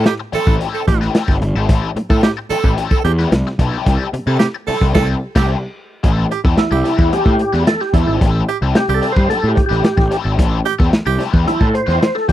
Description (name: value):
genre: funk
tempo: 110 BPM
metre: 4/4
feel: straight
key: A minor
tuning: A4 = 440 Hz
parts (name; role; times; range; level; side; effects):
- breathy tenor saxophone; second line; 0.0-11.2 s; G4 to A4; -20 LUFS; right 9 dB; none
- overdriven electric guitar; accompaniment; 0.0-12.3 s; G3 to B4; -23 LUFS; left 8 dB; wah
- fuzz picked electric bass; bass; 0.0-12.3 s; G1 to C3; -17 LUFS; equal; overdrive
- crunchy breakbeat drum kit; drums; 0.1-12.3 s; crash cymbal, hi-hat, kick drum, snare drum; -15 LUFS; equal; none
- percussive tonewheel organ; melody; 6.6-12.3 s; E4 to C5; -18 LUFS; right 1 dB; overdrive, chorus vibrato, slow rotary speaker
room: studio reverb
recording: dry, close 1970s-style studio recording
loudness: -13 LUFS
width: side -13 dB against mid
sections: 0.0-6.0 A section; 6.0-12.3 B section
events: band accent 5.0-6.0; tonewheel organ solo 6.0-12.3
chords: 0.0 Am7; 3.9 C6; 6.0 Am7